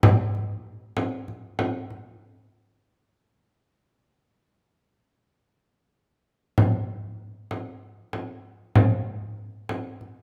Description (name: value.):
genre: contemporary instrumental, contemporary.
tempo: 192 BPM (eighths).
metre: 7/8.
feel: straight.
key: none.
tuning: none.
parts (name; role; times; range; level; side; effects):
frame drum; percussion; 0.0-2.1, 6.6-10.2 s; none; -24 LUFS; equal; none.
room: moderate recital hall reverb, RT60 1.4 s.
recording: none.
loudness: -27 LUFS.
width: mono.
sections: 0.0-2.2 A section; 2.2-10.2 B section.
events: none.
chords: none.